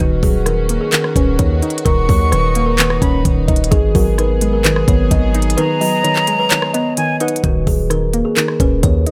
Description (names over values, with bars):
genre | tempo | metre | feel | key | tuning
hip hop, trap | 129 BPM | 4/4 | half-time | Eb minor | A4 = 440 Hz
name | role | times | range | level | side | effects
kalimba | melody | 0.0-9.1 s | Gb4 to Eb5 | -22 LUFS | equal | low-pass filter, tape echo
soft round pluck | accompaniment | 0.0-9.1 s | Eb3 to Eb4 | -23 LUFS | equal | chorus, low-pass filter
warm studio string section | sustained chords | 0.0-7.4 s | Eb3 to Ab4 | -29 LUFS | equal | none
hard-hitting 808-style bass | bass | 0.0-9.1 s | Eb1 to Eb2 | -20 LUFS | equal | none
trap drum kit | drums | 0.0-9.1 s | handclaps, hi-hat, kick drum, rim click | -19 LUFS | equal | none
jazz flute | second line | 1.9-7.4 s | Gb5 to Db6 | -22 LUFS | equal | tape echo
room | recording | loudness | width
small room ambience | none | -15 LUFS | mono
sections
0.0-7.4 A section; 7.4-9.1 B section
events
kick muted 5.6-7.4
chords
0.0 Ebm7; 3.7 Abm7; 7.4 Ebm7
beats
| 0.00 0.46 0.93 1.39 | 1.86 2.32 2.79 3.25 | 3.72 4.18 4.65 5.11 | 5.58 6.04 6.51 6.97 | 7.44 7.90 8.37 8.83